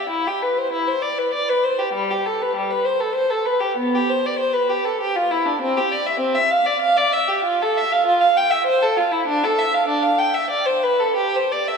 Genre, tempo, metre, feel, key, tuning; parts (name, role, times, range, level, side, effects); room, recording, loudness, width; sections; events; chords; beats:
classical, baroque-style suite movement for unaccompanied violin; 98 BPM; 3/4; rubato; C major; A4 = 440 Hz
rich violin; solo; 0.0-11.8 s; G3 to G5; -17 LUFS; equal
wet church reverb, RT60 3.7 s; minimal, uncompressed stereo recording; -17 LUFS; side -5 dB against mid
0.0-11.8 A section
| 0.09 0.70 1.32 | 1.93 2.54 3.14 | 3.76 4.38 4.99 | 5.60 6.20 6.80 | 7.43 8.05 8.65 | 9.27 9.88 10.51 | 11.17